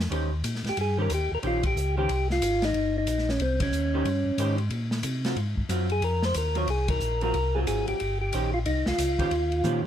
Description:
soul jazz organ trio; 183 BPM; 4/4; swing 62% on 8ths; Eb mixolydian; A4 = 439 Hz
mellow tonewheel organ; bass; 0.0-9.9 s; G1 to C3; -28 LUFS; equal; chorus vibrato, slow rotary speaker
open jazz drum kit; drums; 0.0-9.7 s; hi-hat, kick drum, ride cymbal, snare drum, toms; -33 LUFS; left 1 dB
vintage hollow-body jazz guitar; accompaniment; 0.1-9.8 s; Eb3 to C5; -32 LUFS; right 2 dB
percussive tonewheel organ; melody; 0.7-9.8 s; C4 to Db5; -27 LUFS; equal; slow rotary speaker
light reverb; -24 LUFS; side -10 dB against mid
0.1-9.9 A section
band accent 1.6, 3.6, 6.8; drum fill 9.6
0.1 Eb13; 5.4 Ab13; 8.0 Eb13

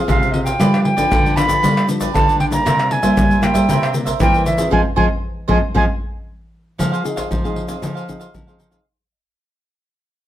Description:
samba and choro; 116 BPM; 4/4; straight; A4 = 443 Hz
cavaquinho; accompaniment; 0.0-8.8 s; Eb4 to F5; -25 LUFS; right 5 dB
nylon-string guitar; accompaniment; 0.0-8.8 s; G2 to Ab4; -24 LUFS; left 2 dB
reedy silver concert flute; melody; 0.1-5.8 s; Eb5 to B5; -19 LUFS; right 1 dB
nylon-string guitar; bass; 0.1-8.8 s; C3 to G3; -20 LUFS; equal
egg shaker, surdo, pandeiro and tamborim; percussion; 0.1-8.9 s; -20 LUFS; left 1 dB
moderate studio reverb, RT60 0.7 s; -14 LUFS; side -12 dB against mid
0.0-6.8 A section; 6.8-8.9 B section
band accent 4.7-6.8; fade-out 6.8-8.9
0.0 Fm; 0.6 G7; 2.7 C7; 4.7 Fm; 6.8 Fm7

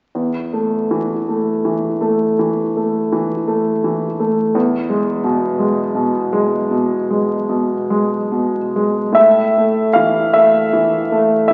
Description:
classical, romantic nocturne for solo piano; 44-58 BPM (dotted quarters); 12/8; rubato; A4 = 440 Hz
clear concert grand piano; solo; 0.1-11.5 s; E2 to F5; -16 LUFS; equal
wet recital hall reverb, RT60 1.4 s; very old 78 rpm record, vinyl crackle, nothing above 7.8 kHz; -17 LUFS; mono
0.2-9.2 A section; 9.2-11.5 B section
0.2 A5/E; 4.6 E; 9.2 A5

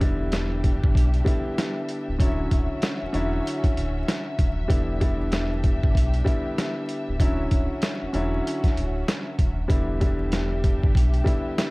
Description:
hip hop, boom-bap hip-hop; 96 BPM; 4/4; swing 62% on 16ths; E dorian; A4 = 440 Hz
warm upright piano; accompaniment; 0.0-11.7 s; D3 to E4; -28 LUFS; equal; cassette tape, high-pass filter, low-pass filter
warm studio string section; sustained chords; 0.0-11.7 s; C#4 to E5; -36 LUFS; left 1 dB; high-pass filter, low-pass filter
sub bass with octave; bass; 0.0-11.2 s; C#1 to B1; -26 LUFS; equal
trip hop sampler-style drum kit; drums; 0.0-11.7 s; hi-hat, kick drum, snare drum; -23 LUFS; equal
little or no reverb; dark, warm production, vinyl crackle; -21 LUFS; side -26 dB against mid
0.0-11.7 A section
0.0 Em7; 2.2 Dmaj9; 4.7 Em7; 7.2 Dmaj9; 9.7 Em7

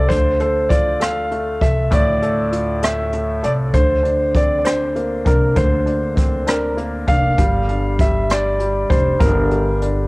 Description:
six-eight pop ballad; 66 BPM (dotted quarters); 6/8; straight; A4 = 440 Hz
clear concert grand piano; melody; 0.0-9.8 s; Bb4 to F5; -19 LUFS; equal; cassette tape, tape echo
clear upright piano; accompaniment; 0.0-10.1 s; A2 to A4; -23 LUFS; left 1 dB; cassette tape
upright bass; bass; 0.0-10.1 s; F1 to D2; -21 LUFS; equal
jazz brush drum kit; drums; 0.1-10.0 s; hi-hat, kick drum, rim click; -19 LUFS; equal; cassette tape
light reverb, studio reverb; home recording on cassette; -15 LUFS; side -24 dB against mid
0.0-10.1 A section
0.1 Dm7; 3.7 Bbadd9; 7.4 Gm7

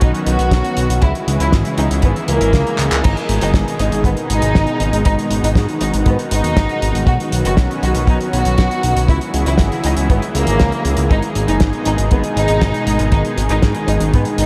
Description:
italo disco; 119 BPM; 4/4; straight; G# minor; A4 = 440 Hz
rich chamber violin section; melody; 0.0-14.5 s; A#3 to F#4; -23 LUFS; equal; diffuse ambient delay
lush unison pad; sustained chords; 0.0-14.5 s; B2 to G#4; -23 LUFS; equal; chorus
fat analog bass; bass; 0.0-14.5 s; F#1 to G#2; -21 LUFS; equal
damped 70s drum kit; drums; 0.0-14.5 s; crash cymbal, handclaps, hi-hat, snare drum; -26 LUFS; equal; small room ambience
kick drum; drums; 0.0-14.2 s; -17 LUFS; equal; small room ambience
wet huge ambient reverb, RT60 8.6 s; dreamy mix soaked in reverb; -16 LUFS; mono
0.0-14.5 A section
drum fill 2.8
0.0 Badd9; 1.0 C#m; 3.0 G#m; 7.1 Badd9; 9.1 C#m; 11.1 G#m

